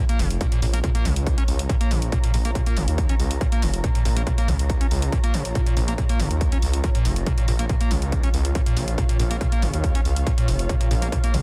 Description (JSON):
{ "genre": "driving peak-time techno", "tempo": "140 BPM", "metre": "4/4", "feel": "straight", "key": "Bb minor", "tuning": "A4 = 436 Hz", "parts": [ { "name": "overdriven acid bass", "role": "riff", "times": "0.0-11.4 s", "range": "Bb2 to Db4", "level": "-31 LUFS", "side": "equal", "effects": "subtle chorus, sidechain pumping, digital delay" }, { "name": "granular cloud pad", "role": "texture", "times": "0.1-11.4 s", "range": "F4 to Bb5", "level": "-37 LUFS", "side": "equal", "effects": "built-in reverb, sidechain pumping" }, { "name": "techno drum kit", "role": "drums", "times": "0.1-11.4 s", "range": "hi-hat, toms", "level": "-34 LUFS", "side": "equal", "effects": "none" }, { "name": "detuned saw bass", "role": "bass", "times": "0.2-11.4 s", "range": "F1 to Eb2", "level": "-27 LUFS", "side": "equal", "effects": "sidechain pumping" }, { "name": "electronic kick drum", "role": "drums", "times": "0.4-11.2 s", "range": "none", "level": "-24 LUFS", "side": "equal", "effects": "distortion" } ], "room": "little or no reverb", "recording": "dense, heavily limited modern master", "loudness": "-22 LUFS", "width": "mono", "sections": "0.0-11.4 A section", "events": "none", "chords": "0.0 Bbm" }